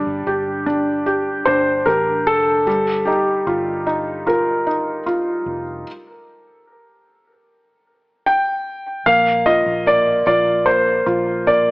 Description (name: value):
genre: pop ballad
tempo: 75 BPM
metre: 4/4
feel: straight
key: unclear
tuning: A4 = 440 Hz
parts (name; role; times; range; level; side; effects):
- felt-muted upright piano; accompaniment; 0.0-11.7 s; G3 to G4; -20 LUFS; equal; none
- vintage muted fingered electric bass; bass; 0.0-11.7 s; F1 to Bb1; -33 LUFS; equal; none
- warm grand piano; melody; 1.5-11.7 s; G4 to G5; -16 LUFS; equal; none
room: moderate recital hall reverb, RT60 1.6 s, small room reverb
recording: AM radio sound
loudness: -15 LUFS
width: side -26 dB against mid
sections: 0.0-9.1 A section; 9.1-11.7 B section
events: stop 5.9-9.1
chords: 0.0 G5; 2.7 Ebadd9/G; 5.9 N.C.; 9.1 Bb